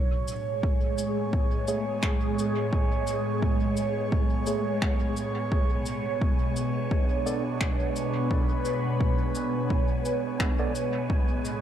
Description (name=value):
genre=ambient dub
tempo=86 BPM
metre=4/4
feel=swing 55% on 16ths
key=B dorian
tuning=A4 = 441 Hz
part: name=airy breathy pad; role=sustained chords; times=0.0-11.6 s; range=A2 to C#5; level=-28 LUFS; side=right 1 dB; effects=chorus, phaser
part: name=wind-like tuned noise texture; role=texture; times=0.4-11.6 s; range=G#3 to G#5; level=-37 LUFS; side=right 1 dB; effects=built-in reverb
part: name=cabasa and finger snaps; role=drums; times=0.3-11.6 s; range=none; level=-36 LUFS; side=left 2 dB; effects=dub echo
part: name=electronic kick drum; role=drums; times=0.6-11.3 s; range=none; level=-26 LUFS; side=equal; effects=overdrive
part: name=tine electric piano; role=stabs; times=1.7-10.7 s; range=A3 to D5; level=-34 LUFS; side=right 2 dB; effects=medium stereo tremolo, low-pass filter, dub echo
room=light reverb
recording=dark, warm production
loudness=-24 LUFS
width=side -10 dB against mid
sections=0.0-11.6 A section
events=filter sweep on tine electric piano 0.0-11.6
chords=0.0 Amaj7; 5.5 Bm; 11.1 Amaj7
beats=0.63 1.33 2.03 | 2.73 3.42 4.12 4.82 | 5.52 6.21 6.91 7.61 | 8.31 9.01 9.70 10.40 | 11.10